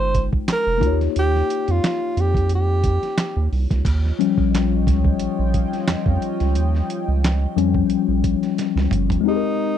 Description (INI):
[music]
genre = R&B, neo-soul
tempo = 89 BPM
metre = 4/4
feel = swing 55% on 16ths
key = unclear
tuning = A4 = 439 Hz
[part]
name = breathy tenor saxophone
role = melody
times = 0.0-3.5, 9.3-9.8 s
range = Eb4 to C5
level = -22 LUFS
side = right 2 dB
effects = slapback echo
[part]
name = tine electric piano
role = accompaniment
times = 0.0-9.8 s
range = F3 to G5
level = -23 LUFS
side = left 12 dB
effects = none
[part]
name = round analog bass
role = bass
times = 0.0-9.2 s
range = F1 to F2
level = -20 LUFS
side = right 1 dB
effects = none
[part]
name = dusty soul sampler-style drum kit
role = drums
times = 0.1-9.2 s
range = crash cymbal, handclaps, hi-hat, kick drum, snare drum, toms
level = -24 LUFS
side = right 2 dB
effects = none
[part]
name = chorused pulse-width pad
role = sustained chords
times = 3.9-9.2 s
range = F4 to G5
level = -30 LUFS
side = right 3 dB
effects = none
[sound]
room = light reverb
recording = dry, close 1970s-style studio recording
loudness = -17 LUFS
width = side -10 dB against mid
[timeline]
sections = 0.0-3.9 A section; 3.9-9.2 B section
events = tine electric piano solo 3.9-9.2; drum fill 8.6-9.2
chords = 0.0 Fm9; 0.8 Eb9; 9.2 Abmaj9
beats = 0.48 | 1.15 1.83 2.50 3.18 | 3.85 4.53 5.20 5.87 | 6.55 7.22 7.90 8.57 | 9.24